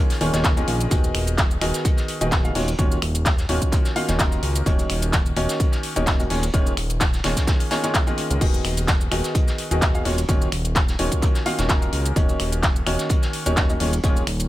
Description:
piano house; 128 BPM; 4/4; swing 54% on 16ths; Eb minor; A4 = 442 Hz
clear upright piano; riff; 0.0-14.2 s; Eb3 to F5; -25 LUFS; equal; sidechain pumping, ping-pong delay
house drum kit; drums; 0.1-14.5 s; cabasa, crash cymbal, finger snaps, handclaps, hi-hat; -26 LUFS; equal
vintage brush drum kit; drums; 0.1-14.4 s; hi-hat, snare drum; -33 LUFS; equal; high-pass filter on hats, high-pass filter on snare, high-pass filter on room
fat analog bass; bass; 0.2-14.5 s; Eb1 to Db2; -24 LUFS; equal; sidechain pumping
electronic kick drum; drums; 0.4-14.1 s; -20 LUFS; equal
little or no reverb; -18 LUFS; side -15 dB against mid
0.0-14.5 A section
0.0 Bbm7/Eb; 0.9 Abm7/Eb; 2.6 Gbmaj7/Eb; 4.7 Ebm7; 6.3 Bbm7/Eb; 8.4 Abm7/Eb; 10.1 Gbmaj7/Eb; 12.2 Ebm7; 13.8 Bbm7/Eb
0.44 | 0.91 1.38 1.85 2.32 | 2.79 3.25 3.72 4.19 | 4.66 5.13 5.60 6.07 | 6.54 7.00 7.47 7.94 | 8.41 8.88 9.35 9.82 | 10.29 10.76 11.22 11.69 | 12.16 12.63 13.10 13.57 | 14.04

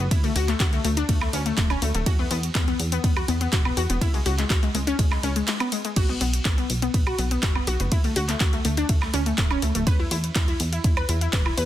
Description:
progressive house; 123 BPM; 4/4; straight; A4 = 442 Hz
analog pluck; arpeggios; 0.0-11.7 s; G#3 to B4; -27 LUFS; left 3 dB; chorus, sidechain pumping, digital delay
plucky analog bass; bass; 0.0-11.7 s; D1 to E2; -26 LUFS; equal; sidechain pumping
deep house drum kit; drums; 0.1-11.7 s; crash cymbal, handclaps, hi-hat, ride cymbal, woodblock; -28 LUFS; right 1 dB; sidechain pumping on hats, sidechain pumping on perc, sidechain pumping on cymbals
electronic kick drum; drums; 0.1-11.4 s; -23 LUFS; equal
digital ambience; dense, heavily limited modern master; -21 LUFS; side -12 dB against mid
0.0-11.7 A section
break 5.5-6.0
0.1 D5; 2.1 E5; 4.0 C#5; 6.0 B5; 7.9 D5; 9.9 E5
| 0.11 0.60 1.09 1.58 | 2.06 2.55 3.04 3.53 | 4.01 4.50 4.99 5.48 | 5.97 6.45 6.94 7.43 | 7.92 8.40 8.89 9.38 | 9.87 10.36 10.84 11.33

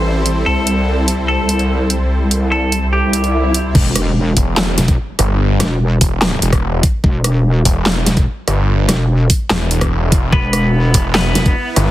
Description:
heavy wobble dubstep; 146 BPM; 4/4; half-time; E minor; A4 = 440 Hz
semi-hollow electric guitar; melody; 0.0-3.7, 10.3-11.7 s; B3 to C5; -20 LUFS; left 1 dB; tape echo
supersaw pad; sustained chords; 0.0-3.7, 10.3-11.9 s; G3 to C5; -22 LUFS; right 1 dB; sidechain pumping
wobble bass; bass; 0.0-11.5 s; E1 to C2; -15 LUFS; equal; chorus, overdrive
dubstep drum kit; drums; 0.3-11.8 s; crash cymbal, handclaps, hi-hat, rim click, snare drum; -18 LUFS; equal; overdrive
swell and impact; sound effects; 3.0-5.4 s; -22 LUFS; equal
electronic kick drum; drums; 3.8-11.5 s; -14 LUFS; equal; overdrive
snarling distorted saw bass; bass; 4.4-11.9 s; E1 to G1; -15 LUFS; equal; distortion, overdrive
light reverb; heavily compressed radio sound, multiband compression; -12 LUFS; side -14 dB against mid
0.0-3.8 A section; 3.8-11.9 B section
swell 3.0-3.8; drop 3.8-11.9; impact 3.8-5.4
0.5 C6; 3.8 E5
0.05 | 0.46 0.87 1.28 1.70 | 2.11 2.52 2.93 3.34 | 3.75 4.16 4.57 4.98 | 5.39 5.80 6.22 6.63 | 7.04 7.45 7.86 8.27 | 8.68 9.09 9.50 9.91 | 10.32 10.74 11.15 11.56

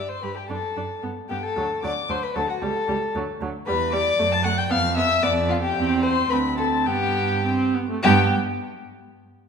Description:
quick classical-period movement for string quartet; 100-117 BPM; 2/4; rubato; G major; A4 = 439 Hz
dark violin; melody; 0.0-8.4 s; F5 to A6; -26 LUFS; left 7 dB
rich violin; second line; 0.0-8.4 s; F4 to A5; -26 LUFS; left 3 dB
rich viola; accompaniment; 0.0-8.4 s; F#3 to G4; -27 LUFS; right 3 dB
warm cello; bass; 0.0-8.4 s; C#2 to G2; -27 LUFS; right 5 dB
wet scoring stage reverb, RT60 1.8 s; minimal, uncompressed stereo recording; -20 LUFS; side -6 dB against mid
0.0-8.0 A section; 8.0-9.2 B section
slowing down 5.2-8.0
0.5 D; 1.0 G; 1.6 D; 2.6 A7/C#; 3.1 D; 3.7 Em; 4.2 Dadd11/F#; 4.7 Dm69/F; 5.8 C/E; 6.3 D5; 6.9 G
| 0.50 1.03 | 1.57 2.10 | 2.62 3.15 | 3.67 4.19 | 4.71 5.23 | 5.76 6.30 | 6.87 7.45 | 8.04

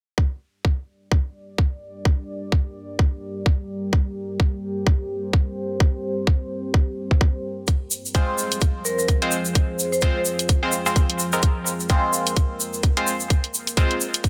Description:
bass house; 128 BPM; 4/4; swing 58% on 16ths; G phrygian; A4 = 440 Hz
deep dark ambient pad; sustained chords; 1.8-14.3 s; F3 to D5; -33 LUFS; equal; chorus, built-in reverb, sidechain pumping
electronic kick drum; drums; 0.2-14.3 s; -21 LUFS; equal
electronic hi-hat; drums; 7.7-14.3 s; -26 LUFS; equal
egg shaker; percussion; 7.7-14.3 s; -29 LUFS; equal
band-passed chord stab; stabs; 8.1-13.9 s; Ab3 to C5; -28 LUFS; equal; phaser, sidechain pumping, tape echo
vibraphone with hard mallets; melody; 8.8-10.1 s; Bb4 to C5; -30 LUFS; equal; vintage 12-bit sampler grit, tape echo
reverse cymbal; sound effects; 14.2-14.3 s; barely audible
light reverb; dense, heavily limited modern master; -23 LUFS; mono
0.2-14.3 A section
0.2 Gm; 7.7 Fm
| 0.18 0.65 1.12 1.58 | 2.05 2.52 2.99 3.46 | 3.93 4.40 4.87 5.33 | 5.80 6.27 6.74 7.21 | 7.68 8.15 8.62 9.08 | 9.55 10.02 10.49 10.96 | 11.43 11.90 12.37 12.83 | 13.30 13.77 14.24

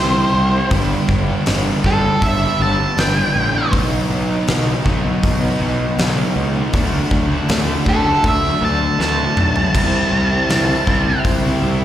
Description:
quiet-loud alternative rock; 80 BPM; 4/4; straight; A4 = 439 Hz
octave-fuzz lead guitar; melody; 0.0-11.2 s; A4 to A5; -19 LUFS; right 1 dB; distortion, slapback echo
bright chamber string section; sustained chords; 0.0-11.8 s; D4 to G5; -30 LUFS; left 1 dB
crunchy overdriven guitar; riff; 0.0-11.8 s; G2 to G4; -23 LUFS; equal; slapback echo
overdriven electric guitar; riff; 0.0-11.8 s; G2 to E4; -24 LUFS; right 1 dB; slapback echo
fuzz picked electric bass; bass; 0.0-11.8 s; G1 to D2; -20 LUFS; equal; overdrive
huge arena drum kit; drums; 0.7-11.4 s; crash cymbal, hi-hat, kick drum, snare drum, toms; -20 LUFS; equal
studio reverb; live gig heard through the venue's PA, recital hall reverb; -14 LUFS; side -11 dB against mid
0.0-11.8 A section
lead electric guitar solo 0.0-11.8; drum fill 9.0-9.7
0.0 C; 0.7 G; 3.7 B; 6.7 D; 9.7 C
| 0.71 1.47 2.22 2.97 | 3.73 4.48 5.23 5.99 | 6.74 7.49 8.24 8.99 | 9.75 10.50 11.25

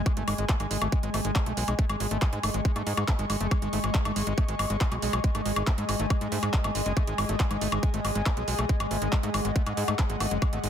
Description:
psychedelic trance; 139 BPM; 4/4; straight; A4 = 437 Hz
evolving wavetable pad; sustained chords; 0.0-10.7 s; G#3; -36 LUFS; equal; chorus, built-in reverb, sidechain pumping
airy breathy pad; texture; 0.0-10.7 s; G#4 to C#6; -34 LUFS; left 2 dB; chorus, sidechain pumping
screaming distorted acid line; riff; 0.1-10.7 s; G#3 to A3; -34 LUFS; equal; distortion, chorus, auto-pan, sidechain pumping, dub echo
drum and bass drum kit; drums; 0.1-10.7 s; handclaps, hi-hat, woodblock; -32 LUFS; equal; overdrive
electronic kick drum; drums; 0.1-10.5 s; -25 LUFS; equal; overdrive
tight sequencer bass; bass; 0.2-10.7 s; F#1 to G#2; -30 LUFS; equal
digital ambience; dense, heavily limited modern master; -24 LUFS; side -9 dB against mid
0.0-10.7 A section
0.0 G#5
| 0.06 0.49 0.92 1.35 | 1.79 2.22 2.65 3.08 | 3.51 3.94 4.38 4.81 | 5.24 5.67 6.10 6.54 | 6.97 7.40 7.83 8.26 | 8.69 9.12 9.56 9.99 | 10.42

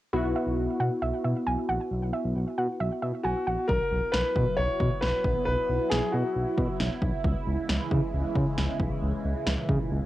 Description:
synth-pop; 135 BPM; 4/4; straight; A4 = 441 Hz
warm analog keys; accompaniment; 0.1-3.6 s; B3 to F#4; -30 LUFS; left 1 dB; chorus, cassette tape
smooth synth bass; bass; 0.1-10.0 s; A#1 to C#3; -28 LUFS; equal; transformer saturation
soft round pluck; second line; 0.4-3.5 s; E5 to G#5; -32 LUFS; right 3 dB; chorus, cassette tape, tape echo
warm concert grand piano; melody; 3.2-6.8 s; F#4 to C#5; -28 LUFS; left 1 dB
phased analog pad; sustained chords; 4.0-10.1 s; A#2 to E4; -32 LUFS; right 2 dB; phaser, chorus, cassette tape
punchy analog drum machine; drums; 3.7-9.8 s; kick drum, snare drum; -30 LUFS; equal
little or no reverb; home recording on cassette; -25 LUFS; side -15 dB against mid
0.1-3.7 A section; 3.7-10.1 B section
0.1 Bsus4; 7.2 C#m7
| 0.13 0.58 1.02 1.47 | 1.91 2.36 2.80 3.25 | 3.69 4.13 4.58 5.02 | 5.47 5.91 6.36 6.80 | 7.25 7.69 8.13 8.58 | 9.02 9.47 9.91

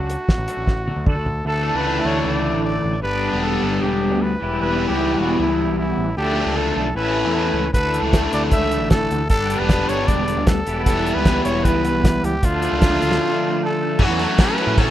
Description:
indie rock; 153 BPM; 4/4; straight; A4 = 440 Hz
growling trumpet; melody; 0.0-14.9 s; E4 to E5; -24 LUFS; equal
cranked stack guitar; riff; 0.0-14.9 s; E3 to A4; -24 LUFS; right 7 dB; overdrive, ensemble chorus
raw garage guitar; riff; 0.0-14.9 s; G2 to F#4; -22 LUFS; left 6 dB; overdrive
growling picked electric bass; bass; 0.0-14.9 s; E1 to D3; -25 LUFS; equal; overdrive
cloth-damped thuddy drum kit; drums; 0.1-1.4, 7.7-14.9 s; crash cymbal, hi-hat, kick drum, ride cymbal, snare drum, toms; -18 LUFS; equal
tine electric piano; second line; 13.6-14.9 s; F#5 to B5; -35 LUFS; equal
tambourine; percussion; 14.2-14.9 s; -37 LUFS; right 5 dB
little or no reverb; rough home demo mix; -17 LUFS; side -12 dB against mid
0.0-1.5 A section; 1.5-14.0 B section
drum fill 0.7-1.5; break 13.2-14.0
0.0 D; 1.5 Dsus2; 3.0 G; 4.4 Em; 6.2 Dm; 7.0 Aadd9; 7.7 Dsus2; 9.3 G; 10.7 Em; 12.4 Dm; 14.0 F#m7
0.29 0.68 1.07 | 1.46 1.86 2.25 2.64 | 3.04 3.43 3.82 4.21 | 4.61 5.00 5.39 5.78 | 6.17 6.57 6.96 7.35 | 7.74 8.13 8.52 8.91 | 9.30 9.70 10.09 10.48 | 10.87 11.26 11.65 12.04 | 12.43 12.82 13.21 13.60 | 13.99 14.38 14.78

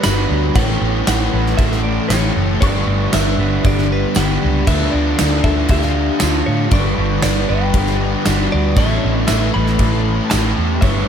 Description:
rock, shoegaze and dream pop; 117 BPM; 4/4; straight; A mixolydian; A4 = 440 Hz
direct-recorded clean electric guitar; melody; 0.0-11.1 s; B4 to B5; -25 LUFS; equal; phaser, analog delay
direct-recorded clean electric guitar; arpeggios; 0.0-11.1 s; F4 to C#6; -27 LUFS; left 7 dB; ensemble chorus, analog delay
overdriven electric guitar; riff; 0.0-11.1 s; G2 to D4; -24 LUFS; right 1 dB; lush chorus
raw garage guitar; riff; 0.0-11.1 s; A2 to B4; -22 LUFS; right 8 dB; overdrive, reverse reverb
thick fuzz guitar; riff; 0.0-11.1 s; G2 to D4; -23 LUFS; left 8 dB; distortion, analog chorus
gated 80s drum kit; drums; 0.0-10.9 s; crash cymbal, kick drum, snare drum; -20 LUFS; equal
tambourine; percussion; 0.0-10.4 s; -31 LUFS; right 12 dB
vintage muted picked electric bass; bass; 0.1-11.0 s; F#1 to A2; -19 LUFS; equal
moderate cathedral reverb, RT60 4.8 s; dreamy mix soaked in reverb; -14 LUFS; side -8 dB against mid
0.0-11.1 A section
0.0 G; 0.6 Aadd9; 2.6 G; 4.7 Dm; 6.7 G; 8.8 Aadd9
0.04 | 0.56 1.07 1.59 2.10 | 2.62 3.13 3.65 4.16 | 4.67 5.19 5.70 6.22 | 6.73 7.24 7.76 8.27 | 8.78 9.29 9.81 10.32 | 10.83

